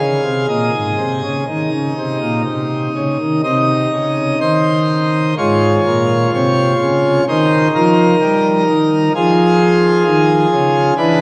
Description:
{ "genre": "classical, chorale-style piece for pipe organ", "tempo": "60-66 BPM", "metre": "4/4", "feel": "rubato", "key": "unclear", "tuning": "A4 = 441 Hz", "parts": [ { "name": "pipe organ, plenum", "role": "solo", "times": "0.0-11.2 s", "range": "Ab2 to F5", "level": "-15 LUFS", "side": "equal", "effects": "none" } ], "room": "wet cathedral reverb, RT60 4.5 s", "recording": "worn, warbling old tape, cassette tape, warbly pitch drift", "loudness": "-15 LUFS", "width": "mono", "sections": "0.0-11.2 A section", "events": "none", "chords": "0.0 Ab; 1.5 Eb5; 3.5 Cm; 5.4 Bbm7/Ab; 7.3 Eb; 9.2 Db/F" }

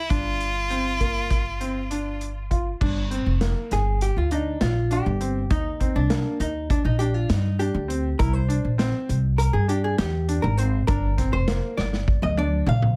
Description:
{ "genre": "progressive instrumental, band music in an uneven meter", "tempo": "200 BPM (eighths)", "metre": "9/8", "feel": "straight", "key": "G phrygian", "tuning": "A4 = 438 Hz", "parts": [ { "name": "bright violin", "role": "melody", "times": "0.0-2.2 s", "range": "E4 to F4", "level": "-30 LUFS", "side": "equal", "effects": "tape echo" }, { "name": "upright bass", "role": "bass", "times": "0.0-13.0 s", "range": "F1 to G2", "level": "-26 LUFS", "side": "equal", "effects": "none" }, { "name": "clear baby grand piano", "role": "arpeggios", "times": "0.1-12.7 s", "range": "Bb3 to F4", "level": "-32 LUFS", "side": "equal", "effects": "none" }, { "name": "vintage drum kit", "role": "drums", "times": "0.1-13.0 s", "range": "crash cymbal, hi-hat, kick drum, snare drum, toms", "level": "-28 LUFS", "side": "equal", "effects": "none" }, { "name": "vintage hollow-body jazz guitar", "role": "accompaniment", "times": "3.7-13.0 s", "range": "D4 to F5", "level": "-31 LUFS", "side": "equal", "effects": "none" } ], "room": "light reverb", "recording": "none", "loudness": "-24 LUFS", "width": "mono", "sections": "0.0-2.8 A section; 2.8-13.0 B section", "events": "hollow-body jazz guitar solo 2.8-13.0; drum fill 11.8-13.0", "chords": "0.1 Gm7; 2.8 Gm; 5.5 Eb; 8.2 C; 10.9 Gm7" }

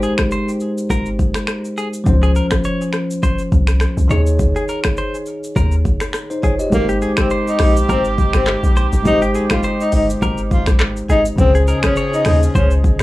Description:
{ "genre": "afrobeats", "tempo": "103 BPM", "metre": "4/4", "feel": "swing 55% on 16ths", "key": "Ab major", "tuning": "A4 = 440 Hz", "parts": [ { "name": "bell-like tine electric piano", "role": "accompaniment", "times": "0.0-13.0 s", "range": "Db3 to Eb5", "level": "-21 LUFS", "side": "left 1 dB", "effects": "none" }, { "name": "direct-recorded clean electric guitar", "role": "riff", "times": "0.0-12.7 s", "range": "G4 to Db5", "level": "-26 LUFS", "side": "equal", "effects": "analog delay" }, { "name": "deep log drum bass", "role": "bass", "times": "0.0-13.0 s", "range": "G1 to Eb2", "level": "-16 LUFS", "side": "equal", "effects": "none" }, { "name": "afro-pop drum kit", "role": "drums", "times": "0.0-13.0 s", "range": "finger snaps, handclaps, hi-hat, kick drum, rim click, shaker", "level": "-19 LUFS", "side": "equal", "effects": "overdrive" }, { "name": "breathy tenor saxophone", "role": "melody", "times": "6.7-12.7 s", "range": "Bb3 to F4", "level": "-19 LUFS", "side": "left 1 dB", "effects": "analog delay, plate reverb" }, { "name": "clear horn section", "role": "second line", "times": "6.7-13.0 s", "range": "Eb3 to Ab4", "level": "-24 LUFS", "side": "right 2 dB", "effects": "plate reverb" } ], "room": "light reverb", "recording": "small room ambience", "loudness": "-14 LUFS", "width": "side -17 dB against mid", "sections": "0.0-6.7 A section; 6.7-13.0 B section", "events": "none", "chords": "0.0 Abmaj7; 2.1 Dbmaj7; 4.1 Eb7sus4; 6.7 Abmaj7; 11.4 Dbmaj7" }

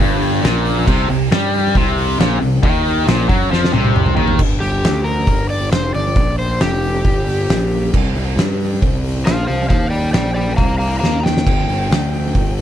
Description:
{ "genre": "blues rock power trio and southern rock", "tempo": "136 BPM", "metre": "4/4", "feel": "straight", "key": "G minor", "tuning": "A4 = 440 Hz", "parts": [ { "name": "overdriven electric guitar", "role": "riff", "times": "0.0-4.4 s", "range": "G2 to G3", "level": "-17 LUFS", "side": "left 1 dB", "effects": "none" }, { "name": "fuzz picked electric bass", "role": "bass", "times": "0.0-12.6 s", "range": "F1 to G2", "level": "-19 LUFS", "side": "equal", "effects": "overdrive" }, { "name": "oversized low-tuned drum kit", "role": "drums", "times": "0.0-12.6 s", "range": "crash cymbal, hi-hat, kick drum, snare drum, toms", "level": "-18 LUFS", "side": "equal", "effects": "none" }, { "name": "overdriven slide guitar", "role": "melody", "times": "4.6-12.5 s", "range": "G4 to Bb5", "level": "-21 LUFS", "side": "left 1 dB", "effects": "slapback echo" } ], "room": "little or no reverb", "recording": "none", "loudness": "-14 LUFS", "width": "side -10 dB against mid", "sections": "0.0-4.4 A section; 4.4-12.6 B section", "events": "drum fill 3.5-4.4, 11.0-11.5; electric slide guitar solo 4.4-12.6", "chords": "0.0 Gm; 0.9 C5; 4.4 Gm; 7.9 C5; 11.5 G5" }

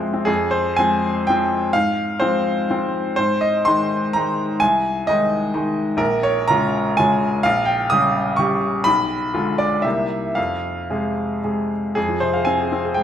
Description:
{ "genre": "classical, romantic character piece for solo piano", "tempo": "94-129 BPM", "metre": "3/4", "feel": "rubato", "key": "F minor", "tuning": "A4 = 441 Hz", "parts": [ { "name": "bright baby grand piano", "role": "solo", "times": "0.0-13.0 s", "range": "Bb1 to Eb6", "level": "-17 LUFS", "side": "equal", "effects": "none" } ], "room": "moderate recital hall reverb, RT60 1.6 s", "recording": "none", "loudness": "-17 LUFS", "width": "side -9 dB against mid", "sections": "0.3-12.0 A section; 12.0-13.0 A section", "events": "none", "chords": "0.3 Fm; 1.7 Fm/Ab; 3.2 Ab; 4.6 Ab/C; 6.0 Bbm7; 7.4 Gdim/Bb; 8.9 Bdim7; 9.8 C7; 10.4 Fm" }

